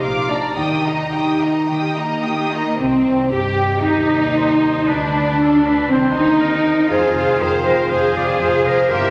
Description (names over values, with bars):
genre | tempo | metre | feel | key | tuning
classical, dramatic, fast romantic movement for symphony orchestra | 106-121 BPM | 4/4 | rubato | C minor | A4 = 440 Hz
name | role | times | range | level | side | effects
rich studio violin section | melody | 0.0-9.1 s | C4 to Eb6 | -28 LUFS | equal | none
dark clarinet | second line | 0.0-9.1 s | C4 to C5 | -27 LUFS | equal | none
rich symphonic violin section | second line | 0.0-9.1 s | C4 to G5 | -26 LUFS | equal | none
rich symphonic viola section | accompaniment | 0.0-9.1 s | C4 to Bb4 | -27 LUFS | equal | none
concert harp | arpeggios | 0.0-9.1 s | F2 to Eb5 | -28 LUFS | equal | none
rich symphonic cello section | bass | 0.0-9.1 s | Bb2 to C5 | -25 LUFS | equal | none
rich symphonic double bass section | bass | 0.0-9.0 s | F1 to G2 | -30 LUFS | equal | none
mellow hollow silver concert flute | second line | 2.8-9.1 s | C4 to Ab5 | -26 LUFS | equal | none
mellow French horn section | sustained chords | 2.8-9.1 s | Bb3 to G4 | -24 LUFS | equal | none
clear oboe | second line | 3.8-9.1 s | G4 to D5 | -27 LUFS | equal | none
room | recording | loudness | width
wet concert hall reverb, RT60 2.1 s | none | -17 LUFS | mono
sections
0.0-2.8 A section; 2.8-9.1 B section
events
none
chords
0.0 Bb; 0.6 Eb; 2.8 Cm; 4.9 Bdim/D; 5.9 Cm; 6.9 Fm